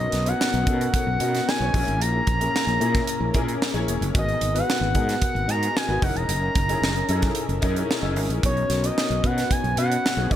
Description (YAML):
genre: polished 1980s jazz-funk pop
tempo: 112 BPM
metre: 4/4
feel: straight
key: unclear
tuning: A4 = 440 Hz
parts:
  - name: expressive synth lead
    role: melody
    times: 0.0-10.4 s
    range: C#5 to A#5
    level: -26 LUFS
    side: equal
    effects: chorus
  - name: warm concert grand piano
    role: accompaniment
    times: 0.0-10.4 s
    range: A#3 to C#5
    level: -27 LUFS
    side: left 3 dB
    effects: ensemble chorus
  - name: fretless electric bass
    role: bass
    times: 0.0-10.4 s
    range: E1 to B2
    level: -25 LUFS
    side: equal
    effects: none
  - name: crisp fusion drum kit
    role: drums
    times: 0.0-10.4 s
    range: hi-hat, kick drum, snare drum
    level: -26 LUFS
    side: right 1 dB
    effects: none
room: little or no reverb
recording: none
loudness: -20 LUFS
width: side -11 dB against mid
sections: 0.0-10.4 A section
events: none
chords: 0.0 Bmaj7; 1.7 A#m7b5; 4.2 G#m9; 6.0 F#13; 8.4 Bmaj7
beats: 0.40 0.94 1.47 | 2.01 2.54 3.08 3.61 | 4.15 4.68 5.22 5.76 | 6.29 6.83 7.36 7.90 | 8.43 8.97 9.50 10.04